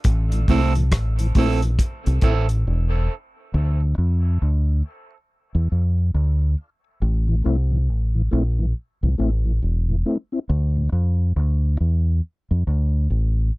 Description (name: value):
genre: dub reggae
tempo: 69 BPM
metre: 4/4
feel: swing 62% on 16ths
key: D minor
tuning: A4 = 440 Hz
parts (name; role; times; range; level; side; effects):
- cloth-damped thuddy drum kit; drums; 0.0-2.6 s; hi-hat, kick drum, rim click; -21 LUFS; equal; none
- deep dub fingered electric bass; bass; 0.1-13.5 s; E1 to F2; -19 LUFS; equal; none
- mellow tonewheel organ; accompaniment; 0.3-10.8 s; D2 to F4; -24 LUFS; left 2 dB; chorus vibrato, slow rotary speaker, high-pass filter
- electric guitar at the edge of break-up; accompaniment; 0.5-2.5 s; A3 to A4; -27 LUFS; right 5 dB; high-pass filter, dub echo
room: little or no reverb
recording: dry, close 1970s-style studio recording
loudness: -19 LUFS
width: side -22 dB against mid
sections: 0.0-3.5 A section; 3.5-13.6 B section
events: break 2.7-3.5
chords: 0.1 Am; 3.5 Dm; 7.0 Am; 10.5 Dm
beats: | 0.05 0.92 1.79 2.66 | 3.53 4.40 5.27 6.13 | 7.00 7.87 8.74 9.61 | 10.48 11.35 12.22 13.09